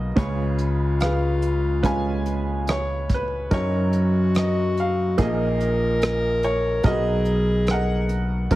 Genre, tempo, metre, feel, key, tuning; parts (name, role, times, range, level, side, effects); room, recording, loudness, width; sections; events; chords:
acoustic folk-pop ballad; 72 BPM; 4/4; straight; A4 = 440 Hz
bright upright piano; melody; 0.0-8.6 s; F#1 to G#5; -25 LUFS; right 2 dB
fingered electric bass; bass; 0.0-8.6 s; F#1 to F#2; -23 LUFS; equal
dark clarinet; second line; 0.2-8.6 s; E#4 to A#4; -26 LUFS; left 2 dB
soft brush drum kit; drums; 0.2-8.6 s; hi-hat, kick drum, rim click; -26 LUFS; right 1 dB
little or no reverb; heavily compressed radio sound; -20 LUFS; side -16 dB against mid
0.0-8.6 A section
0.2 C#7; 3.5 F#6; 5.2 A#7sus4; 6.8 Bmaj7